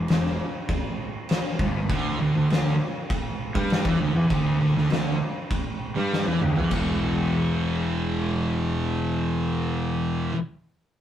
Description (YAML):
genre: stoner and doom metal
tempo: 100 BPM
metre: 4/4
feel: straight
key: E minor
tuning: A4 = 445 Hz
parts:
  - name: thick fuzz guitar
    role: riff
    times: 0.0-10.3 s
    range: E2 to G3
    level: -28 LUFS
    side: left 3 dB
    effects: distortion
  - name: fuzz fingered electric bass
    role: bass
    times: 0.0-10.3 s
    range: E1 to G2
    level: -28 LUFS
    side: equal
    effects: overdrive
  - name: oversized low-tuned drum kit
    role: drums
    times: 0.1-6.9 s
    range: crash cymbal, kick drum, snare drum, toms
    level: -27 LUFS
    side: equal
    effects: none
  - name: thick fuzz guitar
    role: riff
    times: 1.9-10.4 s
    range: E2 to G3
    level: -27 LUFS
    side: right 4 dB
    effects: distortion
room: light reverb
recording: rough rehearsal-room recording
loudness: -22 LUFS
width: side -10 dB against mid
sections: 0.0-6.7 A section; 6.7-9.1 B section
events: drum fill 6.1-6.7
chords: 0.0 Em; 1.9 Dsus24; 6.7 E5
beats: 0.10 0.70 1.30 | 1.91 2.50 3.11 3.71 | 4.31 4.91 5.51 6.12 | 6.72 7.33 7.93 8.54